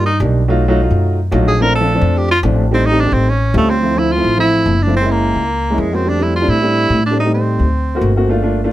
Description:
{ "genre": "Afro-Cuban jazz", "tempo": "215 BPM", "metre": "4/4", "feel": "straight", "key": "D minor from 3.8 s", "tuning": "A4 = 439 Hz", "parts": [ { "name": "warm tenor saxophone", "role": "melody", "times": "0.0-8.1 s", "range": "G#3 to Bb4", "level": "-16 LUFS", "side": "right 2 dB", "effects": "none" }, { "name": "warm concert grand piano", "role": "accompaniment", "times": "0.0-8.7 s", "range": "F3 to F#4", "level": "-17 LUFS", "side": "equal", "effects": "none" }, { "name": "upright bass", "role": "bass", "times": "0.0-8.7 s", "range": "F#1 to A2", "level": "-16 LUFS", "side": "equal", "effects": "none" } ], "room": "little or no reverb", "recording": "close, detailed microphones", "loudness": "-12 LUFS", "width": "side -14 dB against mid", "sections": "0.0-3.8 A section; 3.8-8.7 B section", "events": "tenor saxophone solo 0.0-3.8", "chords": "0.5 B7#11; 1.6 Bbmaj9; 2.7 Am7b5; 3.3 A7alt; 3.8 Dm9; 4.9 F#9; 6.1 F69; 7.2 Am7b5; 7.7 D7b13" }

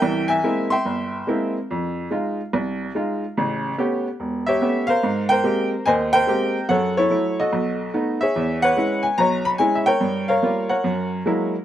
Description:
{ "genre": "solo jazz", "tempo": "144 BPM", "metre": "4/4", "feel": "swing 66% on 8ths", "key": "unclear", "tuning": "A4 = 435 Hz", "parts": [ { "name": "bright upright piano", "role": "solo", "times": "0.0-11.6 s", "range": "E1 to C6", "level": "-19 LUFS", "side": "equal", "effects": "none" } ], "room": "little or no reverb", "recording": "recorded outdoors, with no room sound", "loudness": "-19 LUFS", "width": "side -11 dB against mid", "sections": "0.0-8.3 A section; 8.3-11.6 B section", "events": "none", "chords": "0.0 C7b13; 1.7 Fm7; 3.4 A9; 5.0 Abmaj9; 6.7 Gbm7; 7.5 B7; 8.3 E6; 10.0 Gm7b5; 10.8 Gb9" }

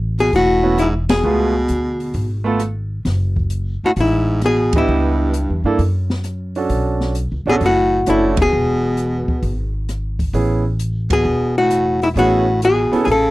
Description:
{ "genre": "jazz, small-group swing and bop", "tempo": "132 BPM", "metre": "4/4", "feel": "swing 68% on 8ths", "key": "A major", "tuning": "A4 = 438 Hz", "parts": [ { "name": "upright bass", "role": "bass", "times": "0.0-13.3 s", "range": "E1 to G2", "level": "-20 LUFS", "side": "equal", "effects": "none" }, { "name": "archtop guitar, miked and amplified", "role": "melody", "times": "0.2-13.3 s", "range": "E4 to A4", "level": "-17 LUFS", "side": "left 2 dB", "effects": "slapback echo" }, { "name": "breathy baritone saxophone", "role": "second line", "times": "0.2-13.3 s", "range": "G2 to C#3", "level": "-21 LUFS", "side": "right 1 dB", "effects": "slapback echo" }, { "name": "open jazz drum kit", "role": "drums", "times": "0.2-13.2 s", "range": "hi-hat, kick drum, ride cymbal, rim click, snare drum", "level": "-22 LUFS", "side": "equal", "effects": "none" }, { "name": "clear concert grand piano", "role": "accompaniment", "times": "0.6-13.1 s", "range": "A3 to D#5", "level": "-20 LUFS", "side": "right 4 dB", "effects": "none" } ], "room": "little or no reverb", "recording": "dry, close 1970s-style studio recording", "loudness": "-15 LUFS", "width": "side -18 dB against mid", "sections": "0.0-13.3 A section", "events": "band accent 1.0, 4.7, 8.3, 11.0", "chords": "0.0 Amaj7sus2; 1.2 C#7b13; 3.1 F#m9; 4.9 C#m7b5; 5.8 F#m; 6.7 Bm9; 8.5 E; 10.3 Amaj9" }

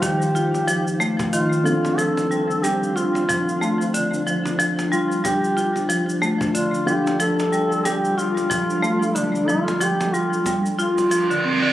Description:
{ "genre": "organic downtempo", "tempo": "92 BPM", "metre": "4/4", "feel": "swing 58% on 16ths", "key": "unclear", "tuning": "A4 = 440 Hz", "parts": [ { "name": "mellow duduk", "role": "melody", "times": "0.0-11.4 s", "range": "D4 to A4", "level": "-23 LUFS", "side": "equal", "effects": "ping-pong delay" }, { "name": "felt-muted upright piano", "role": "accompaniment", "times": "0.0-11.5 s", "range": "D3 to G4", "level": "-29 LUFS", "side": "equal", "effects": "ping-pong delay" }, { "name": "granular cloud pad", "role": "sustained chords", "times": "0.0-11.4 s", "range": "G3 to G5", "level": "-29 LUFS", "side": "left 2 dB", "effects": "built-in reverb" }, { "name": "marimba with hard mallets", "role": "arpeggios", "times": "0.0-11.7 s", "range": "D3 to F4", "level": "-22 LUFS", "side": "equal", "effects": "low-pass filter, ping-pong delay" }, { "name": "electronic hi-hat and cabasa", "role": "drums", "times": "0.0-11.4 s", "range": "none", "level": "-33 LUFS", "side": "equal", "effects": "none" }, { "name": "cajon", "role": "percussion", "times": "0.0-11.1 s", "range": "none", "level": "-32 LUFS", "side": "right 1 dB", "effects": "none" }, { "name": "reverse cymbal", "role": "sound effects", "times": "11.1-11.7 s", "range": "none", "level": "-22 LUFS", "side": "right 3 dB", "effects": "none" } ], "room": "moderate lush hall reverb, RT60 2.3 s", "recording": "recorded on a phone in the room, club reverb, compression", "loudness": "-18 LUFS", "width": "side -13 dB against mid", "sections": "0.0-11.7 A section", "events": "reverse cymbal 11.1-11.7", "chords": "0.0 F7(no3); 1.7 Dm7; 6.9 G5" }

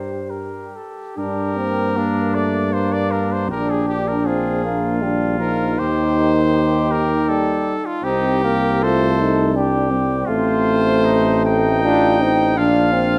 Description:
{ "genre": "classical, hymn-like piece for brass band", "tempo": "79 BPM", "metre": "3/4", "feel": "uneven beats, rubato", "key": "G minor", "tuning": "A4 = 440 Hz", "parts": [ { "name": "mellow cornet", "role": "melody", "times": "0.0-13.2 s", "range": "F4 to G5", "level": "-26 LUFS", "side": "equal", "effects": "none" }, { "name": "clear flugelhorn", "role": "second line", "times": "0.0-13.2 s", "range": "D4 to C5", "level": "-29 LUFS", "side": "equal", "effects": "none" }, { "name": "warm euphonium", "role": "accompaniment", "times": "0.0-13.2 s", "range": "Bb3 to G4", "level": "-26 LUFS", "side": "equal", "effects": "none" }, { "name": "warm euphonium", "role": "accompaniment", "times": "0.0-13.2 s", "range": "Eb3 to D4", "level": "-24 LUFS", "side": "equal", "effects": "none" }, { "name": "mellow tuba", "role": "bass", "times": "0.0-13.2 s", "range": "A1 to G2", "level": "-24 LUFS", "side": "equal", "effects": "none" } ], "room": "moderate scoring stage reverb, RT60 2.0 s", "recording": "close, detailed microphones", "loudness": "-18 LUFS", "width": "mono", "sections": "0.0-1.2 A section; 1.2-13.2 B section", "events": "none", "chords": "0.0 Gm; 3.5 Bb7; 5.8 Eb; 8.0 Cm; 10.3 F7/A; 12.6 Bb" }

